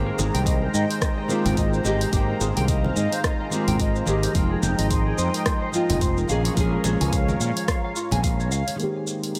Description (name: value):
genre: sunset chillout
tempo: 108 BPM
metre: 4/4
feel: swing 58% on 16ths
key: Ab major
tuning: A4 = 439 Hz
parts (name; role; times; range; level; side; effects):
- nylon-string guitar; accompaniment; 0.0-9.4 s; Eb3 to G5; -29 LUFS; equal; low-pass filter, delay
- lush unison pad; sustained chords; 0.0-9.4 s; Ab3 to Bb5; -32 LUFS; equal; chorus, phaser
- mellow electric guitar; arpeggios; 0.0-8.7 s; F4 to Ab5; -33 LUFS; equal; subtle chorus, delay
- fretless electric bass; bass; 0.0-8.6 s; F1 to Bb2; -26 LUFS; equal; none
- deep house drum kit; drums; 0.2-9.4 s; hi-hat, rim click, shaker; -32 LUFS; equal; none
- congas; percussion; 0.2-8.8 s; none; -36 LUFS; equal; none
- electronic kick drum; drums; 0.5-8.4 s; none; -27 LUFS; equal; none
room: light reverb, digital ambience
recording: none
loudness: -23 LUFS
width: mono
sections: 0.0-8.8 A section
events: none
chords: 0.0 Abmaj9; 4.4 Fm11; 6.3 Bbm7; 8.8 Abmaj9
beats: 0.46 1.02 1.57 | 2.13 2.68 3.24 3.79 | 4.35 4.91 5.46 6.02 | 6.57 7.13 7.68 8.24 | 8.79 9.35